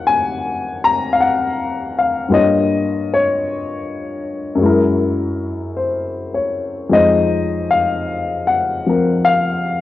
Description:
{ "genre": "jazz ballad", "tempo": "52 BPM", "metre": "4/4", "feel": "swing 69% on 8ths", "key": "unclear", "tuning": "A4 = 441 Hz", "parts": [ { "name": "warm baby grand piano", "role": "solo", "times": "0.0-9.8 s", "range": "Eb2 to Bb5", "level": "-15 LUFS", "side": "left 3 dB", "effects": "cassette tape" } ], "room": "light reverb, small room ambience", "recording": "home recording on cassette", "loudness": "-15 LUFS", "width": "side -14 dB against mid", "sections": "0.0-9.8 A section", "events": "none", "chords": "0.0 Ebm9; 2.3 Gm7b5; 4.6 Gb9; 6.9 Fm7" }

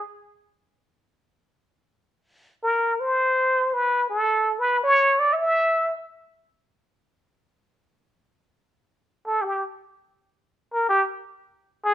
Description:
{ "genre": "jazz", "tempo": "free time", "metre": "none", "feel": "none", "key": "C major", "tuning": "A4 = 438 Hz", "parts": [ { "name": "trumpet with plunger mute", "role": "solo", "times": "2.6-5.9, 9.3-11.9 s", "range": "G4 to E5", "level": "-20 LUFS", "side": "equal", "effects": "none" } ], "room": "moderate large studio reverb, RT60 0.9 s", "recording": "minimal, uncompressed stereo recording", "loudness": "-20 LUFS", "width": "side -12 dB against mid", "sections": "0.0-9.0 A section; 9.0-11.9 B section", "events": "muted trumpet solo 9.0-11.9", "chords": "none" }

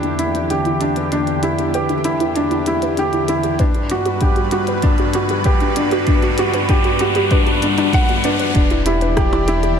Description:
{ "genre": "piano and strings electronica", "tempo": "97 BPM", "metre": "4/4", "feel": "straight", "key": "E minor", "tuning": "A4 = 442 Hz", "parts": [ { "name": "lush unison pad", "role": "sustained chords", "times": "0.0-9.8 s", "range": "E2 to B4", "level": "-22 LUFS", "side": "left 1 dB", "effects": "chorus, phaser" }, { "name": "warbly dusty pluck", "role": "arpeggios", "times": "0.0-9.7 s", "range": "D4 to B4", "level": "-23 LUFS", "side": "right 1 dB", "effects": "chorus, sidechain pumping, ping-pong delay" }, { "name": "felt-muted upright piano", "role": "riff", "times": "0.0-9.8 s", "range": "D4 to F#5", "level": "-19 LUFS", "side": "equal", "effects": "ping-pong delay" }, { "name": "minimal click drum kit", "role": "drums", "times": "0.0-9.8 s", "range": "hi-hat, percussion blips, rim click", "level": "-30 LUFS", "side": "left 2 dB", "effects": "none" }, { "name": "riser", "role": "sound effects", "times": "2.6-8.5 s", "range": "none", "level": "-26 LUFS", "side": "equal", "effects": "none" }, { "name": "electronic kick drum", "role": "drums", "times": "3.6-9.3 s", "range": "none", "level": "-17 LUFS", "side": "equal", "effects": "none" }, { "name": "round analog bass", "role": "bass", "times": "8.5-9.8 s", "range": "E1", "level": "-21 LUFS", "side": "equal", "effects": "sidechain pumping" } ], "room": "moderate lush hall reverb, RT60 2.0 s", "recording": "none", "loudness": "-14 LUFS", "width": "side -7 dB against mid", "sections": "0.0-8.5 A section; 8.5-9.8 B section", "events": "build-up 0.0-8.5; filter sweep on synth arpeggio sound 0.0-8.5; riser 2.6-8.5; drop 8.5-9.8", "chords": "0.0 Em7; 3.6 Gmaj7; 8.5 Em7" }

